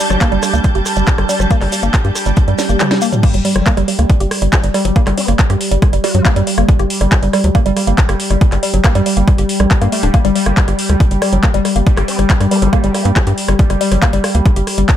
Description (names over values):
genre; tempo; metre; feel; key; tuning
psychedelic trance; 139 BPM; 4/4; straight; G harmonic minor; A4 = 439 Hz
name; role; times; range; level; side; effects
bubbling stepped-filter texture; sustained chords; 0.0-15.0 s; G3; -20 LUFS; equal; chorus, built-in reverb, sidechain pumping
woody wave-folded pluck; riff; 0.0-14.9 s; F#3 to G4; -18 LUFS; moving between left 9 dB and right 6 dB; chorus, auto-pan, sidechain pumping, digital delay
techno drum kit; drums; 0.0-15.0 s; crash cymbal, handclaps, hi-hat, rim click, snare drum, toms; -20 LUFS; equal; none
shekere; percussion; 0.0-3.2 s; none; -25 LUFS; right 3 dB; none
dark studio string section; texture; 0.0-3.3 s; D4 to G6; -22 LUFS; right 2 dB; sidechain pumping
tight sequencer bass; bass; 0.1-14.8 s; D1 to G2; -15 LUFS; equal; tube saturation
electronic kick drum; drums; 0.2-15.0 s; none; -12 LUFS; equal; none
swell; sound effects; 2.5-3.2 s; none; -22 LUFS; left 3 dB; none
vowel-sweep wobble bass; second line; 5.2-6.4, 12.1-13.1 s; G3 to F#4; -27 LUFS; left 4 dB; analog chorus, sidechain pumping, high-pass filter, tape echo
room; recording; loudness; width
little or no reverb; none; -11 LUFS; side -11 dB against mid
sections
0.0-3.2 A section; 3.2-15.0 B section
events
swell 2.5-3.2; drum fill 2.6-3.2; drop 3.2-15.0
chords
0.0 G5